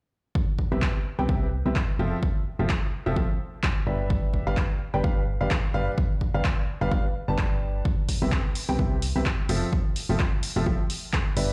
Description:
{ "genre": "piano house", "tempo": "128 BPM", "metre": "4/4", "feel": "swing 57% on 16ths", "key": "unclear", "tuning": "A4 = 440 Hz", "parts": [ { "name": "electronic kick drum", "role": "drums", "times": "0.4-11.2 s", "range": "none", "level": "-28 LUFS", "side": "equal", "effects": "none" }, { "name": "bright upright piano", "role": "riff", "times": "0.7-11.5 s", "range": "C3 to A5", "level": "-32 LUFS", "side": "equal", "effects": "sidechain pumping, dub echo" }, { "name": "solid FM bass", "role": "bass", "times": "0.7-11.5 s", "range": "F1 to C2", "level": "-29 LUFS", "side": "equal", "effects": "sidechain pumping" }, { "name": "punchy analog drum machine", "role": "drums", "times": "0.8-11.5 s", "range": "handclaps, hi-hat", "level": "-34 LUFS", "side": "equal", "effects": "none" } ], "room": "little or no reverb", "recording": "played on a big sound system in a bare room, large studio reverb", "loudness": "-26 LUFS", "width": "mono", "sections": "0.4-11.5 A section", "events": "none", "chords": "0.4 Cmaj7; 2.0 Fmaj7; 4.1 G7; 7.9 Cmaj7; 9.5 Fmaj7", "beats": "| 0.35 0.82 1.29 1.76 | 2.23 2.70 3.16 3.63 | 4.10 4.57 5.04 5.51 | 5.98 6.45 6.91 7.38 | 7.85 8.32 8.79 9.26 | 9.73 10.20 10.66 11.13" }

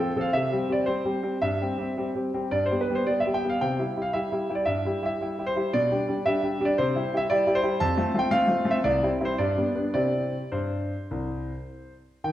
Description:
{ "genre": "classical-period piano sonatina", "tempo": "104-118 BPM", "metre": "4/4", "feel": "rubato", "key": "C major", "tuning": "A4 = 440 Hz", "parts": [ { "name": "clear grand piano", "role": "solo", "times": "0.0-12.3 s", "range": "C2 to A5", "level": "-23 LUFS", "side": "equal", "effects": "none" } ], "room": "wet recital hall reverb, RT60 1.4 s", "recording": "heard from further back in the room", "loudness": "-23 LUFS", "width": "side -13 dB against mid", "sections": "0.0-12.2 A section", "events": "none", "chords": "0.3 C5; 1.4 C/G; 2.5 G; 3.6 C; 5.7 G/B; 6.8 C; 7.8 F; 8.9 C; 9.4 G; 9.9 C", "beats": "0.33 0.86 | 1.41 1.97 2.53 3.07 | 3.62 4.16 4.68 5.21 | 5.74 6.26 6.78 7.29 | 7.81 8.33 8.85 9.39 | 9.95 10.52 11.10 11.67 | 12.24" }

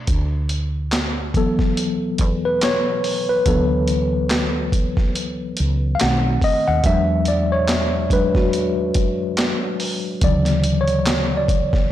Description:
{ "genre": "R&B, neo-soul", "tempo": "71 BPM", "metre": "4/4", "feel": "swing 56% on 16ths", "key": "D major", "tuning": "A4 = 439 Hz", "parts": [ { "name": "woody fretless electric bass", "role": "bass", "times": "0.1-11.9 s", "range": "B1 to F#2", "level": "-23 LUFS", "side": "right 1 dB", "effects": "transformer saturation, wide subtle chorus" }, { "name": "boom bap sampler-style drum kit", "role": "drums", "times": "0.1-11.9 s", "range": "handclaps, hi-hat, kick drum, snare drum", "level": "-21 LUFS", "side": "right 1 dB", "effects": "none" }, { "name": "mellow tine electric piano", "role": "accompaniment", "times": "1.4-11.9 s", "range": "C#3 to F#5", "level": "-20 LUFS", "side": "left 2 dB", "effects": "medium stereo tremolo" } ], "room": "light reverb, digital ambience", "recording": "blown-out, overdriven recording, overdrive", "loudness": "-17 LUFS", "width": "side -12 dB against mid", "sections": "0.1-11.9 A section", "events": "tine electric piano solo 0.1-11.9", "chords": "0.1 D69; 6.0 B7b9; 6.8 E9; 10.2 Dmaj9", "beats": "| 0.08 0.92 1.77 2.61 | 3.46 4.30 5.15 5.99 | 6.84 7.68 8.53 9.38 | 10.22 11.06 11.91" }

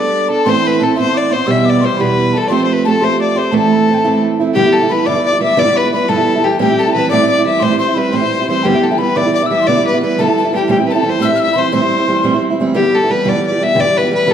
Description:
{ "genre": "celtic folk, Celtic jig", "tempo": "117 BPM (dotted quarters)", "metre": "6/8", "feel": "straight", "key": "unclear", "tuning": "A4 = 439 Hz", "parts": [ { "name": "rich fiddle", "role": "melody", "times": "0.0-14.3 s", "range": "G4 to E5", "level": "-15 LUFS", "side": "left 3 dB", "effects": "none" }, { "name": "breathy tin whistle", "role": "second line", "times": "0.0-12.4 s", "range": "G5 to F6", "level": "-20 LUFS", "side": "left 5 dB", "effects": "none" }, { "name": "picked old ladder-braced acoustic guitar", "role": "accompaniment", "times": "0.0-14.3 s", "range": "E2 to A4", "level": "-14 LUFS", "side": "right 4 dB", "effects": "none" } ], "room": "wet recital hall reverb, RT60 1.4 s", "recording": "dark, warm production", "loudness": "-11 LUFS", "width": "side -8 dB against mid", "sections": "0.0-4.6 A section; 4.6-12.7 B section; 12.7-14.3 B section", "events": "none", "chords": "0.5 Amadd9; 1.5 Em; 2.5 Fadd9; 3.5 Am; 4.6 G6; 6.6 Am7; 8.6 G6; 10.7 Am7; 12.7 G6", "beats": "| 0.45 0.97 | 1.48 1.99 | 2.50 3.02 | 3.53 4.04 | 4.55 5.07 | 5.58 6.09 | 6.60 7.11 | 7.63 8.14 | 8.65 9.16 | 9.67 10.18 | 10.70 11.21 | 11.72 12.23 | 12.74 13.25 | 13.76 14.27" }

